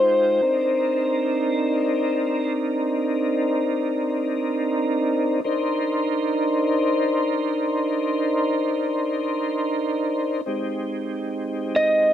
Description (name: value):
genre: blues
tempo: 48 BPM (dotted quarters)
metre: 12/8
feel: straight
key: C minor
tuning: A4 = 440 Hz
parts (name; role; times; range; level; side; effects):
- electric slide guitar; melody; 0.0-2.5, 11.8-12.1 s; C5 to Eb5; -20 LUFS; left 1 dB; none
- tonewheel organ; sustained chords; 0.0-12.1 s; Ab3 to G5; -21 LUFS; equal; chorus vibrato, slow rotary speaker
room: light reverb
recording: none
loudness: -20 LUFS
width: side -10 dB against mid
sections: 0.0-12.1 A section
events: none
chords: 0.5 Cm9; 10.5 Abmaj7